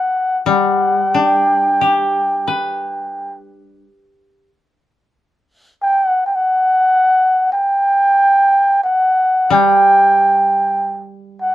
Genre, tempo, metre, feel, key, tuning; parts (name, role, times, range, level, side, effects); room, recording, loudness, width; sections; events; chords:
japanese traditional, Japanese chamber music; free time; G ryukyu; A4 = 443 Hz
breathy flugelhorn; melody; 0.0-11.5 s; F#5 to G5; -12 LUFS; equal
koto; accompaniment; 0.5-11.5 s; G3 to B4; -19 LUFS; left 5 dB
light reverb; -12 LUFS; side -14 dB against mid
0.0-11.5 A section